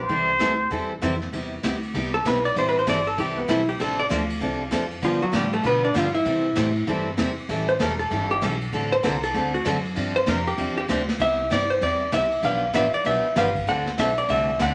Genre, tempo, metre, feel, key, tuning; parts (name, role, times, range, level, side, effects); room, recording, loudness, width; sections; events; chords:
country, western swing; 194 BPM; 4/4; swing 63% on 8ths; C major; A4 = 436 Hz
trumpet with plunger mute; melody; 0.0-1.0 s; C5; -24 LUFS; equal
vintage hollow-body jazz guitar; second line; 0.0-14.7 s; F3 to F#5; -25 LUFS; equal
upright bass; bass; 0.0-14.7 s; E1 to C3; -33 LUFS; equal
picked steel-string acoustic guitar; accompaniment; 0.1-14.7 s; B2 to B4; -29 LUFS; equal
vintage brush drum kit; drums; 0.1-14.7 s; brushed snare drum, hi-hat, kick drum, ride cymbal, snare drum; -34 LUFS; equal
wet studio reverb, RT60 0.8 s; nothing above 10.5 kHz; -23 LUFS; mono
0.0-1.3 A section; 1.3-14.7 B section
hollow-body jazz guitar solo 1.3-14.7
0.1 C6; 1.3 Cmaj7; 2.6 Am7; 3.8 F6/A; 5.0 G7; 6.3 C6; 7.5 A7; 8.7 D7/A; 10.0 G7sus4; 11.2 Cmaj7; 12.4 G7; 13.7 D7